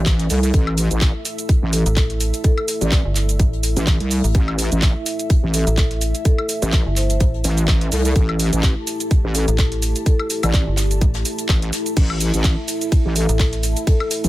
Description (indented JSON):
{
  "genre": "bass house",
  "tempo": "126 BPM",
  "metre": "4/4",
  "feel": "swing 56% on 16ths",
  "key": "unclear",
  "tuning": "A4 = 440 Hz",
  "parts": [
    { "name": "dark analog pad", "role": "sustained chords", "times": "0.0-14.3 s", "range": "A3 to E5", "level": "-30 LUFS", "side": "equal", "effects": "wide subtle chorus, sidechain pumping" },
    { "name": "wobble bass", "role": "bass", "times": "0.0-14.3 s", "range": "A1 to C2", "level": "-19 LUFS", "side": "equal", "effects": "chorus, overdrive, sidechain pumping" },
    { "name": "downlifter", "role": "sound effects", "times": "0.0-0.5 s", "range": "none", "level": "barely audible", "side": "none", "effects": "none" },
    { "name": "ethereal airy pad", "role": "texture", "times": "0.0-14.3 s", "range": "E4 to A5", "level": "-31 LUFS", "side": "equal", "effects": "ensemble chorus, built-in reverb, sidechain pumping" },
    { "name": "electronic kick drum", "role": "drums", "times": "0.1-14.0 s", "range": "none", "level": "-16 LUFS", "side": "equal", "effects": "none" },
    { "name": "garage drum kit", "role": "drums", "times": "0.1-14.3 s", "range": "crash cymbal, handclaps, hi-hat, ride cymbal, shaker, woodblock", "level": "-25 LUFS", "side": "right 1 dB", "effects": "none" },
    { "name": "soft brush drum kit", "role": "drums", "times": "0.1-14.3 s", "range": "hi-hat, snare drum", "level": "-36 LUFS", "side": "left 6 dB", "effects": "none" },
    { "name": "marimba with soft mallets", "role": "melody", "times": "0.3-14.1 s", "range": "A4 to D5", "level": "-28 LUFS", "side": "left 1 dB", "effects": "digital delay" },
    { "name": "metallic FM bass", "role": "bass", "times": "1.9-13.7 s", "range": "G1 to A1", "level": "-20 LUFS", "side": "equal", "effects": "overdrive, sidechain pumping" }
  ],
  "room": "digital ambience",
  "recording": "none",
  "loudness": "-16 LUFS",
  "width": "side -16 dB against mid",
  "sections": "0.0-14.3 A section",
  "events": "none",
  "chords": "0.0 A5"
}